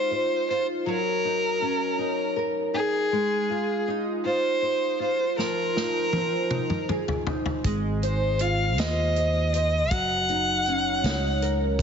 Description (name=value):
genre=six-eight pop ballad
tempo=53 BPM (dotted quarters)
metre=6/8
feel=straight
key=Ab mixolydian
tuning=A4 = 441 Hz
part: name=warm violin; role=melody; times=0.0-11.4 s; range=Ab4 to Gb5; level=-25 LUFS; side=equal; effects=none
part: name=flamenco guitar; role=accompaniment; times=0.0-11.8 s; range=F3 to Eb5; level=-28 LUFS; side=equal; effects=double-tracked left and right
part: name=natural country drum kit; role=drums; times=5.4-11.8 s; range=hi-hat, kick drum, snare drum, toms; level=-30 LUFS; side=equal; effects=none
part: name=fingered electric bass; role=bass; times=7.6-11.8 s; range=Gb1 to Eb2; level=-27 LUFS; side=equal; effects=none
room=moderate concert hall reverb, RT60 2.2 s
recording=heavily compressed radio sound, nothing above 7.7 kHz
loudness=-23 LUFS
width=side -7 dB against mid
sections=0.0-11.8 A section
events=drum fill 5.4-7.6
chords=0.0 Ab6; 0.9 Gb6; 3.1 Ab6; 5.4 Fm7; 7.6 Ab6; 9.9 Gb6